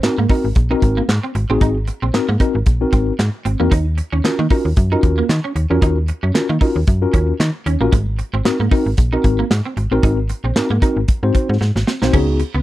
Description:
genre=early-eighties boogie funk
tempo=114 BPM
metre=4/4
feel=swing 56% on 16ths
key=unclear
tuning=A4 = 442 Hz
part: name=mellow tine electric piano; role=accompaniment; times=0.0-12.4 s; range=Cb4 to C5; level=-19 LUFS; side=left 2 dB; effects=medium stereo tremolo
part: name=electric guitar at the edge of break-up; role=riff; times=0.0-12.6 s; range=Ab3 to Eb4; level=-24 LUFS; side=right 5 dB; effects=ensemble chorus
part: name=slap-like FM bass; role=bass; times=0.0-12.6 s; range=Ab1 to Eb3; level=-18 LUFS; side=equal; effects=none
part: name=modern studio drum kit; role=drums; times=0.0-12.5 s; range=crash cymbal, handclaps, hi-hat, kick drum, snare drum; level=-16 LUFS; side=equal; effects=none
room=small room ambience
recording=dry, close 1970s-style studio recording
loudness=-14 LUFS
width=side -15 dB against mid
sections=0.0-12.1 A section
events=drum fill 11.6-12.1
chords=0.0 Ab7; 3.7 Ebm7; 7.9 Ab7

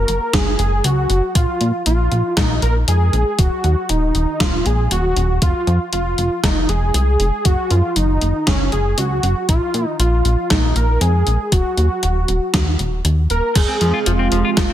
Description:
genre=synthwave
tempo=118 BPM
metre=4/4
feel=straight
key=unclear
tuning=A4 = 440 Hz
part: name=wide unison lead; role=melody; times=0.0-14.7 s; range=Db4 to Bb4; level=-20 LUFS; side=equal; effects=cassette tape, digital delay
part: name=chorused synth bass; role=bass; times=0.0-14.7 s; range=Eb1 to Bb2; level=-17 LUFS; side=equal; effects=none
part: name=gated 80s digital drum machine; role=drums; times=0.1-14.7 s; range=crash cymbal, hi-hat, snare drum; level=-21 LUFS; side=equal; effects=gated reverb, gated reverb snare, overdrive
part: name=electronic kick drum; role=drums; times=0.3-14.7 s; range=none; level=-18 LUFS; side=equal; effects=overdrive
part: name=lush unison pad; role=sustained chords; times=13.6-14.7 s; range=C3 to F5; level=-22 LUFS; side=right 4 dB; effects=chorus, sidechain pumping
part: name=clean electric guitar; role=arpeggios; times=13.6-14.7 s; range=F3 to F4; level=-23 LUFS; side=left 5 dB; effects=digital delay
room=light reverb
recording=none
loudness=-15 LUFS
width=side -12 dB against mid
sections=0.0-14.7 A section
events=none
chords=0.0 Gb; 1.4 Bb5; 3.4 Ebm; 5.4 Fm; 7.5 Gb5; 9.5 Bb5; 11.5 Ebm; 13.6 Fm

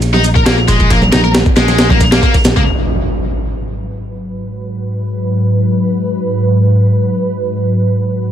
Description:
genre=breakbeat, breaks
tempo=136 BPM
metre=4/4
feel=swing 53% on 16ths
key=G# minor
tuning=A4 = 440 Hz
part: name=picked electric bass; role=bass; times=0.0-2.6 s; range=A#1 to C#2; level=-14 LUFS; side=equal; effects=none
part: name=breakbeat sampler-style drum kit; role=drums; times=0.0-2.7 s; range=kick drum, ride cymbal, snare drum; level=-12 LUFS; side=equal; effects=none
part: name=shaker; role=drums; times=0.0-2.6 s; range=none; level=-29 LUFS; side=right 9 dB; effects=none
part: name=heavy high-gain guitar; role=riff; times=0.1-2.6 s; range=G#3 to A#4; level=-15 LUFS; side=left 2 dB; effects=distortion, tube saturation, ping-pong delay
part: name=congas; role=percussion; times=0.1-2.1 s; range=none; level=-21 LUFS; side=right 3 dB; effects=none
part: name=lush unison pad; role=sustained chords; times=2.7-8.3 s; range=G#2 to B4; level=-14 LUFS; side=equal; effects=chorus, sidechain pumping
part: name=impact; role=sound effects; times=2.7-4.4 s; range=none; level=-19 LUFS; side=equal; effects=none
room=moderate studio reverb, RT60 0.5 s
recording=none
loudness=-10 LUFS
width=side -10 dB against mid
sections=0.0-2.7 A section; 2.7-8.3 B section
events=impact 2.7-4.4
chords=0.0 A#7(no3); 2.7 G#m7

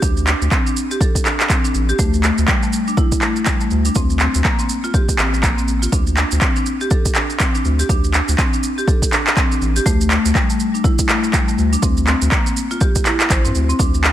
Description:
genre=afro house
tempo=122 BPM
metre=4/4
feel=swing 60% on 16ths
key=D minor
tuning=A4 = 440 Hz
part: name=marimba with medium hard mallets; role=arpeggios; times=0.0-14.1 s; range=G3 to C5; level=-20 LUFS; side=left 1 dB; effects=sidechain pumping, digital delay
part: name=round analog bass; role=bass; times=0.0-14.1 s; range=A1 to G2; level=-18 LUFS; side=equal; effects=sidechain pumping
part: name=electronic kick drum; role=drums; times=0.0-13.9 s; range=none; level=-18 LUFS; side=equal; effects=overdrive
part: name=electronic shaker and handclaps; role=drums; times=0.0-14.1 s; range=none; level=-20 LUFS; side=right 1 dB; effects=overdrive
room=digital ambience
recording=none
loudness=-14 LUFS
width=side -12 dB against mid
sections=0.0-14.1 A section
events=none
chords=0.0 D5; 2.0 A5/D; 4.0 N.C.; 5.9 D5; 9.9 A5/D; 11.8 C5/D

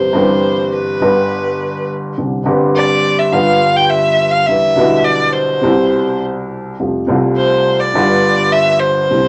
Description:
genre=tango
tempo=104 BPM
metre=4/4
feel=rubato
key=C major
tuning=A4 = 440 Hz
part: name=warm violin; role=second line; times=0.0-9.3 s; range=B4 to G5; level=-16 LUFS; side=equal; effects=none
part: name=dark upright piano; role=accompaniment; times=0.0-9.3 s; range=G1 to G4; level=-17 LUFS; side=equal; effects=none
room=wet studio ambience, RT60 0.5 s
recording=none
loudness=-14 LUFS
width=mono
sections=0.0-9.3 A section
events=violin solo 0.0-9.3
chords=0.0 C/G; 1.0 G; 2.2 Csus2; 3.3 G7; 4.5 Em7; 5.6 Cmaj7; 6.8 Fadd9; 7.9 G7

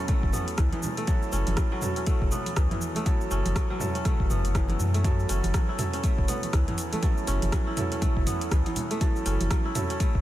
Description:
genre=afro house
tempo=121 BPM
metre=4/4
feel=swing 59% on 16ths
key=F# minor pentatonic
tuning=A4 = 440 Hz
part: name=kora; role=arpeggios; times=0.0-10.2 s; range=E3 to E4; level=-32 LUFS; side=equal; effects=sidechain pumping, diffuse ambient delay
part: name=felt-muted upright piano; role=stabs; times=0.0-10.2 s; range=C#4 to A4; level=-34 LUFS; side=right 3 dB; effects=sidechain pumping, diffuse ambient delay
part: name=deep house drum kit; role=drums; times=0.1-10.1 s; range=cabasa, hi-hat, rim click, toms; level=-34 LUFS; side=equal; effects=none
part: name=electronic kick drum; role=drums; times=0.1-10.2 s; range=none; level=-25 LUFS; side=equal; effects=none
part: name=congas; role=percussion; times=0.1-9.9 s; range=none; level=-36 LUFS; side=right 3 dB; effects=none
part: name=warm sub bass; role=bass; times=0.2-10.2 s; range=F#1 to F#2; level=-26 LUFS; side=equal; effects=tube saturation, sidechain pumping
room=light reverb, small room ambience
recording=none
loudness=-24 LUFS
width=side -14 dB against mid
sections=0.0-10.2 A section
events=none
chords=0.0 F#m7

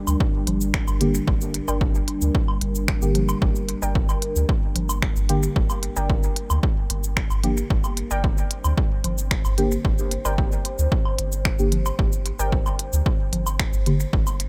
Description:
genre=dub techno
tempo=112 BPM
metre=4/4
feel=straight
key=G minor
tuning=A4 = 443 Hz
part: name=deep dark ambient pad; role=sustained chords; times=0.0-14.5 s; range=G3 to C5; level=-34 LUFS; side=equal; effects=chorus, built-in reverb, sidechain pumping
part: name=soft dub sub bass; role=bass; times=0.1-14.5 s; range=G1 to D2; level=-27 LUFS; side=equal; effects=sidechain pumping
part: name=deep house drum kit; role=drums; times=0.1-14.5 s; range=cabasa, finger snaps, hi-hat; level=-31 LUFS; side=equal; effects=dub echo
part: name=woodblock and congas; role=percussion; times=0.1-14.4 s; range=none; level=-34 LUFS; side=equal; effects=overdrive, sidechain pumping on perc, dub echo
part: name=electronic kick drum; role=drums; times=0.2-14.2 s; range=none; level=-25 LUFS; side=equal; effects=none
part: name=deep mellow chord stab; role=stabs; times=1.0-14.0 s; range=D3 to G4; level=-30 LUFS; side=equal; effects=chorus, phaser, sidechain pumping, dub echo
part: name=warbly dusty pluck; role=riff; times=1.7-12.5 s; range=Bb4 to G5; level=-37 LUFS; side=equal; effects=chorus, cassette tape, sidechain pumping, dub echo
room=digital ambience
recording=none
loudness=-22 LUFS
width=mono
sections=0.0-14.5 A section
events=filter sweep on synth stab 0.0-14.5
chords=0.0 Gm

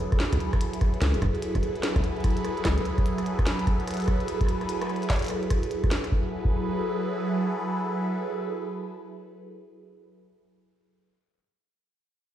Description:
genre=IDM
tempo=147 BPM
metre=4/4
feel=swing 62% on 16ths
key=F# minor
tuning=A4 = 440 Hz
part: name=phased analog pad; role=sustained chords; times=0.0-10.1 s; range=F#3 to B4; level=-29 LUFS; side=right 1 dB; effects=phaser, chorus
part: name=glitchy drum kit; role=drums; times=0.0-6.1 s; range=hi-hat, rim click, snare drum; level=-33 LUFS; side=equal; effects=ping-pong delay
part: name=electronic kick drum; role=drums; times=0.1-6.6 s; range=none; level=-26 LUFS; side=equal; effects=none
part: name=deep acid bass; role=bass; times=0.3-2.8 s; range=F#1 to C#2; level=-24 LUFS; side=equal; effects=none
room=light reverb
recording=played on a big sound system in a bare room, stone room reverb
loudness=-24 LUFS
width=side -11 dB against mid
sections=0.0-6.1 A section; 6.1-9.4 B section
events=none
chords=0.0 F#m11

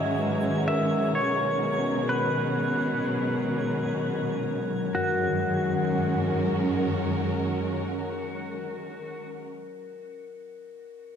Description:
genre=ambient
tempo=63 BPM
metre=4/4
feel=straight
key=F# major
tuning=A4 = 440 Hz
part: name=pedal steel guitar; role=melody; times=0.0-9.3 s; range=F#4 to E5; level=-30 LUFS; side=equal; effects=diffuse ambient delay
part: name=dark studio string section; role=sustained chords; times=0.0-9.5 s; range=D#3 to A#5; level=-30 LUFS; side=right 1 dB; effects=none
part: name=vibraphone with medium mallets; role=arpeggios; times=0.0-11.2 s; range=A#4 to B4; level=-33 LUFS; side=left 7 dB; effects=diffuse ambient delay
part: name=warm studio cello section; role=bass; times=0.0-7.8 s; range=F#2 to B2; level=-31 LUFS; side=equal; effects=none
part: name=bowed-like drone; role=drone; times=0.0-9.3 s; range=F#3 to C#4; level=-34 LUFS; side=right 2 dB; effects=built-in reverb
part: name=twinkling granular texture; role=texture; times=0.0-5.0 s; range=G#6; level=-44 LUFS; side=right 2 dB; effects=built-in reverb
room=wet concert hall reverb, RT60 2.0 s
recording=cassette tape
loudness=-24 LUFS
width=side -8 dB against mid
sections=0.0-5.0 A section; 5.0-8.8 B section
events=none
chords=0.0 Emaj7/G#; 1.2 Bmaj7; 5.0 F#add9

